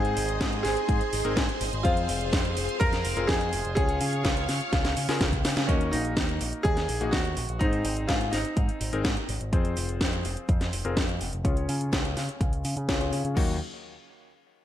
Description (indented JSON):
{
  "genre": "italo disco",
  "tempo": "125 BPM",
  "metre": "4/4",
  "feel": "straight",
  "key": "Eb dorian",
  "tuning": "A4 = 440 Hz",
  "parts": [
    { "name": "bright concert grand piano", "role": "melody", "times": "0.0-9.2 s", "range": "Db4 to Bb4", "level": "-30 LUFS", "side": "equal", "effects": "tape echo" },
    { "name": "string machine, full ensemble", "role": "sustained chords", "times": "0.0-5.7 s", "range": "Ab4 to Db6", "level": "-33 LUFS", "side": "right 1 dB", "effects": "phaser, ensemble chorus" },
    { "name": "clear electric grand piano", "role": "stabs", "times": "0.0-13.5 s", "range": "Gb3 to Db5", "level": "-34 LUFS", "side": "left 5 dB", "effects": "low-pass filter, ping-pong delay" },
    { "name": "picked electric bass with an envelope filter", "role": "bass", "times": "0.0-13.6 s", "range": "F1 to Db3", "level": "-31 LUFS", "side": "equal", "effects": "tube saturation" },
    { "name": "house drum kit", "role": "drums", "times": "0.0-13.5 s", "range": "crash cymbal, hi-hat, snare drum", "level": "-31 LUFS", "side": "equal", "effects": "gated reverb" },
    { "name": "electronic kick drum", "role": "drums", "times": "0.4-13.5 s", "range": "none", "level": "-27 LUFS", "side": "equal", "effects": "none" }
  ],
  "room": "little or no reverb",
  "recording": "lossy compression artefacts",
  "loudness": "-24 LUFS",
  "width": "side -11 dB against mid",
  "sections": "0.0-5.7 A section; 5.7-13.4 B section; 13.4-14.6 C section",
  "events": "drum fill 4.7-5.7; band accent 5.6; filter sweep on electric grand piano 5.7-13.4",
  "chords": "0.0 Ab; 1.8 Fm; 3.8 Db; 5.7 Ebm; 7.6 Ab; 9.5 Fm; 11.4 Db; 13.4 Ebm"
}